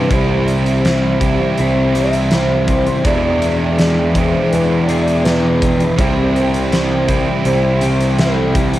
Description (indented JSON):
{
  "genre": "rock, shoegaze and dream pop",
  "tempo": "82 BPM",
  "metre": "4/4",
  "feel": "straight",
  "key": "C major",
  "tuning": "A4 = 443 Hz",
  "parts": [
    { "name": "warm velvety synth lead", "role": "melody", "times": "0.0-8.8 s", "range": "G4 to E5", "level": "-21 LUFS", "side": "equal", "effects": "chorus, analog delay" },
    { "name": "warm analog pad", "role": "sustained chords", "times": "0.0-8.8 s", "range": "G4 to G5", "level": "-25 LUFS", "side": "equal", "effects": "chorus" },
    { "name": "twelve-string electric guitar", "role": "arpeggios", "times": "0.0-8.8 s", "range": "E3 to G#4", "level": "-29 LUFS", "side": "left 5 dB", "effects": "none" },
    { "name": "overdriven electric guitar", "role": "riff", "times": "0.0-8.8 s", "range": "E2 to E4", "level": "-20 LUFS", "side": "right 6 dB", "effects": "reverse reverb" },
    { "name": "thick fuzz guitar", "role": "riff", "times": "0.0-8.8 s", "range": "E2 to C4", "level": "-20 LUFS", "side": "left 4 dB", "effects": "distortion, lush chorus" },
    { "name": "fuzz picked electric bass", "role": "bass", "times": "0.0-8.7 s", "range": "C2 to E2", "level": "-18 LUFS", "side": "equal", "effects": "overdrive, transformer saturation" },
    { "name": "huge arena drum kit", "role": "drums", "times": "0.1-8.8 s", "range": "hi-hat, kick drum, snare drum", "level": "-20 LUFS", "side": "equal", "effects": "cassette tape" }
  ],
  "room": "light reverb",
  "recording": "home recording on cassette",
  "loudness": "-12 LUFS",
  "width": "side -14 dB against mid",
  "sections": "0.1-8.8 A section",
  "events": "none",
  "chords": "0.1 C; 3.0 E7; 6.0 C"
}